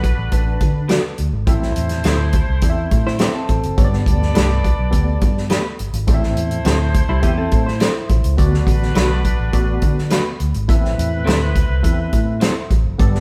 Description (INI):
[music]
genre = uptempo 1960s-style soul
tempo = 104 BPM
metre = 4/4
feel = straight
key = A dorian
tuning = A4 = 441 Hz
[part]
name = warm horn section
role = second line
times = 0.0-13.2 s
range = B3 to D5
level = -31 LUFS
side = equal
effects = none
[part]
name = vintage muted fingered electric bass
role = bass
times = 0.0-13.2 s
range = F#1 to D3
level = -22 LUFS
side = equal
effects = none
[part]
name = natural country drum kit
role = drums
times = 0.0-13.2 s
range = hi-hat, kick drum, snare drum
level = -20 LUFS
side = equal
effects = none
[part]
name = tine electric piano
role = accompaniment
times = 0.3-13.2 s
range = G2 to A5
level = -26 LUFS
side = equal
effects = overdrive
[part]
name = electric guitar through a small old amp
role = stabs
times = 0.9-12.5 s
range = A3 to D5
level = -26 LUFS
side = equal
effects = spring reverb
[part]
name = clean electric guitar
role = riff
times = 3.1-8.4 s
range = G3 to C5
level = -26 LUFS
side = equal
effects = none
[sound]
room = moderate stone room reverb, RT60 1.0 s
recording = band playing live in one room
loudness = -17 LUFS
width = mono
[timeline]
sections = 0.0-13.2 A section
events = none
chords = 0.0 D6; 1.5 Am; 3.8 Gadd9; 6.1 Am; 8.4 D6; 10.7 Am